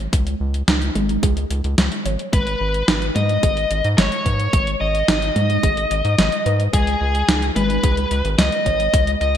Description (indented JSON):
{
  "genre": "synthwave",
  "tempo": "109 BPM",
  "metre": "4/4",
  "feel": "straight",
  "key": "G# minor",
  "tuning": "A4 = 437 Hz",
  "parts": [
    { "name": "round analog bass", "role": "bass", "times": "0.0-9.4 s", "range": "G#1 to G#2", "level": "-22 LUFS", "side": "equal", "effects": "sidechain pumping" },
    { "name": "warbly dusty pluck", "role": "arpeggios", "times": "0.1-9.2 s", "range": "G#3 to C#5", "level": "-26 LUFS", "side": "equal", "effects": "chorus, digital delay, shimmer reverb" },
    { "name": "clean 12-bit digital drum machine", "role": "drums", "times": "0.1-9.4 s", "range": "hi-hat, snare drum", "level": "-22 LUFS", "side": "equal", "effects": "gated reverb" },
    { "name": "electronic kick drum", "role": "drums", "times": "0.1-9.0 s", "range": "none", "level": "-19 LUFS", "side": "equal", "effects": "none" },
    { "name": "biting lead guitar", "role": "melody", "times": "2.3-9.4 s", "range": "G#4 to D#5", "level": "-21 LUFS", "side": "left 1 dB", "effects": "overdrive, digital delay, shimmer reverb" }
  ],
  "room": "moderate lush hall reverb, RT60 2.0 s, digital ambience",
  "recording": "bright 1980s-style digital production",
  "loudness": "-16 LUFS",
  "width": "side -9 dB against mid",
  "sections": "0.0-9.4 A section",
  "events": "none",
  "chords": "0.0 C#5; 2.3 G#5; 6.7 C#sus2"
}